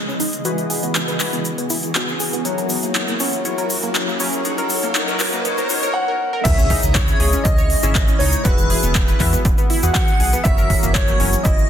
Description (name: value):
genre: progressive house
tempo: 120 BPM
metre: 4/4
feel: straight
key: C# dorian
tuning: A4 = 440 Hz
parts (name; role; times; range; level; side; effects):
- shimmering ambient pad; sustained chords; 0.0-11.7 s; C#3 to D#5; -28 LUFS; equal; chorus, built-in reverb, sidechain pumping
- round analog bass; bass; 0.0-11.7 s; E1 to G#2; -21 LUFS; equal; sidechain pumping, high-pass filter
- riser and impact; sound effects; 1.6-8.5 s; none; -28 LUFS; equal; none
- analog pluck; arpeggios; 0.1-11.5 s; A#3 to C#5; -27 LUFS; right 1 dB; chorus, sidechain pumping, dub echo
- egg shaker; percussion; 0.1-11.7 s; none; -30 LUFS; left 5 dB; none
- big-room dance drum kit; drums; 0.2-11.6 s; crash cymbal, handclaps, hi-hat; -22 LUFS; equal; none
- chorused polysynth; stabs; 0.5-11.4 s; C#3 to F#5; -25 LUFS; left 3 dB; sidechain pumping, dub echo
- dark concert grand piano; melody; 5.9-11.7 s; B4 to F#5; -24 LUFS; equal; sidechain pumping, digital delay
- airy dreamy lead; second line; 6.4-11.7 s; B4 to F#5; -26 LUFS; equal; chorus, sidechain pumping, dub echo
- electronic kick drum; drums; 6.5-11.6 s; none; -17 LUFS; equal; overdrive
room: light reverb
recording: dense, heavily limited modern master, high-pass filter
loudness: -16 LUFS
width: side -9 dB against mid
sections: 0.0-6.5 A section; 6.5-11.7 B section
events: build-up 0.0-6.5; filter sweep on synth pluck 0.0-6.5; riser 1.6-6.0; drop 6.5-11.7; impact 6.5-8.5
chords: 0.5 Eadd9; 2.5 F#7; 4.5 G#m; 6.5 C#madd9; 8.5 Eadd9; 10.5 F#7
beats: | 0.45 0.95 1.45 1.95 | 2.45 2.95 3.45 3.95 | 4.45 4.95 5.45 5.95 | 6.45 6.95 7.45 7.95 | 8.45 8.95 9.45 9.95 | 10.45 10.95 11.45